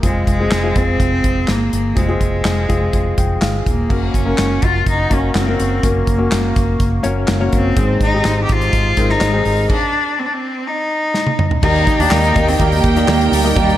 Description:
piano-driven pop; 124 BPM; 4/4; straight; A4 = 439 Hz
rich cello; melody; 0.0-13.8 s; G3 to G4; -19 LUFS; equal; slapback echo
felt-muted upright piano; accompaniment; 0.0-13.8 s; Ab2 to G5; -21 LUFS; left 3 dB; slapback echo
vintage muted fingered electric bass; bass; 0.0-13.8 s; Eb1 to Eb2; -19 LUFS; equal
modern studio drum kit; drums; 0.0-13.8 s; crash cymbal, handclaps, hi-hat, kick drum, snare drum, toms; -18 LUFS; equal
chorused pulse-width pad; sustained chords; 3.9-13.8 s; Ab3 to Db6; -28 LUFS; right 1 dB
warm studio violin section; second line; 11.6-13.8 s; G4 to G5; -20 LUFS; right 4 dB
picked steel-string acoustic guitar; riff; 11.6-13.8 s; Eb3 to Bb4; -22 LUFS; right 7 dB; slapback echo
light reverb, small room ambience; -13 LUFS; side -13 dB against mid
0.0-3.9 A section; 3.9-11.6 B section; 11.6-13.8 C section
felt piano fill 2.9-3.9; stop 9.7-11.6; drum fill 11.1-11.6
0.0 Fm; 3.9 Gb; 7.8 Ab; 11.6 Eb
| 0.03 0.52 1.00 1.48 | 1.97 2.45 2.93 3.42 | 3.90 4.38 4.87 5.35 | 5.83 6.32 6.80 7.28 | 7.77 8.25 8.73 9.22 | 9.70 10.18 10.67 11.15 | 11.63 12.11 12.60 13.08 | 13.56

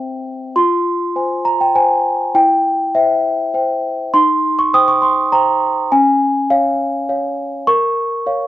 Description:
classical, lullaby for celesta; 101 BPM; 3/4; straight; F minor; A4 = 439 Hz
celesta; solo; 0.0-8.5 s; C4 to Eb6; -13 LUFS; equal
light reverb; worn, warbling old tape, cassette tape, warbly pitch drift; -13 LUFS; side -14 dB against mid
0.6-8.5 A section
0.0 C; 0.6 Fm; 2.4 C/E; 4.1 Cm/Eb; 5.9 Db; 7.7 Bbm
| 0.56 1.16 1.75 | 2.35 2.94 3.54 | 4.13 4.72 5.31 | 5.90 6.49 7.08 | 7.67 8.26

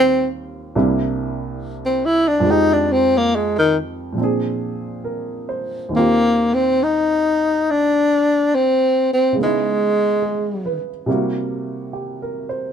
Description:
jazz ballad; 70 BPM; 4/4; swing 69% on 8ths; Eb major; A4 = 440 Hz
breathy tenor saxophone; melody; 0.0-10.8 s; Eb3 to E4; -15 LUFS; left 1 dB
dark baby grand piano; accompaniment; 0.0-12.7 s; C2 to C5; -22 LUFS; right 2 dB
light reverb; minimal, uncompressed stereo recording; -16 LUFS; side -8 dB against mid
0.0-5.9 A section; 5.9-12.7 B section
tenor saxophone solo 0.0-5.9
0.0 Eb69; 0.7 C7; 2.5 Fm7; 4.2 Bb7; 5.9 Eb69; 9.4 Dbm7; 11.1 C7#11
0.74 1.60 | 2.45 3.31 4.18 5.05 | 5.92 6.79 7.65 8.51 | 9.36 10.22 11.07 11.92

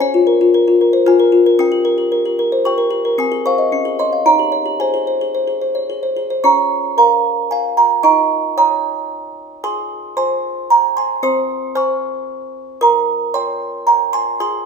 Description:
classical, lullaby for music box; 113 BPM; 3/4; straight; Ab major; A4 = 441 Hz
music box; solo; 0.0-14.7 s; C4 to F6; -13 LUFS; equal
moderate recital hall reverb, RT60 1.6 s; minimal, uncompressed stereo recording; -13 LUFS; side -6 dB against mid
0.0-6.4 A section; 6.4-14.7 B section
0.0 Bbm7/Db; 1.6 Eb7/Db; 3.2 Ab/C; 3.7 Db; 4.3 Eb7; 4.8 Ab; 6.4 Bbm/Db; 8.0 Eb7; 9.6 Ab; 11.2 Ab/C; 12.8 Eb7/Bb
| 0.00 0.53 1.06 | 1.59 2.12 2.65 | 3.18 3.72 4.25 | 4.79 5.34 5.89 | 6.43 6.97 7.51 | 8.04 8.57 9.11 | 9.63 10.16 10.70 | 11.22 11.76 12.29 | 12.81 13.34 13.87 | 14.40

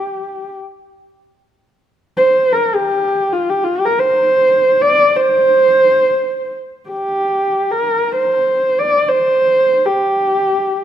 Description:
mongolian traditional, Mongolian folk; free time; G yu mode; A4 = 440 Hz
dark horsehead fiddle; solo; 0.0-10.8 s; F4 to D5; -12 LUFS; right 1 dB
moderate scoring stage reverb, RT60 1.8 s; close, detailed microphones; -12 LUFS; side -10 dB against mid
0.0-1.9 A section; 1.9-10.8 A section
free time

